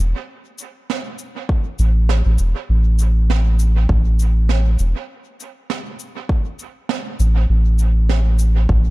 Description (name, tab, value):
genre	ambient dub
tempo	100 BPM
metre	4/4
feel	swing 55% on 16ths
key	unclear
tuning	A4 = 443 Hz
part	soft dub sub bass	bass	0.0-8.9 s	E1 to A1	-14 LUFS	equal	none
part	cabasa and snare drum	drums	0.0-8.5 s	none	-28 LUFS	right 7 dB	dub echo
part	electronic kick drum	drums	1.5-8.8 s	none	-18 LUFS	equal	overdrive
room	little or no reverb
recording	dark, warm production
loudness	-15 LUFS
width	side -20 dB against mid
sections	0.0-8.9 A section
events	none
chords	none